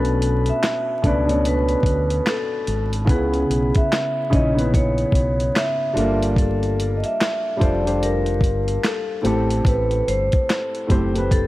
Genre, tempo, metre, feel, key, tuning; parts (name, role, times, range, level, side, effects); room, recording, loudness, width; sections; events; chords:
lo-fi hip hop; 73 BPM; 4/4; swing 61% on 16ths; A4 = 441 Hz
vibraphone with medium mallets; melody; 0.0-11.5 s; G#4 to E5; -23 LUFS; equal; low-pass filter, tape echo
warm upright piano; accompaniment; 0.0-11.5 s; A2 to C#5; -23 LUFS; equal; cassette tape, low-pass filter
fingered electric bass; bass; 0.0-11.5 s; F1 to D2; -22 LUFS; equal
dusty soul sampler-style drum kit; drums; 0.0-11.5 s; handclaps, hi-hat, kick drum, snare drum; -21 LUFS; equal
little or no reverb; vinyl crackle; -18 LUFS; side -17 dB against mid
0.0-11.5 A section
0.0 Bm9; 3.1 C#m9; 6.0 Gm9; 9.2 Am9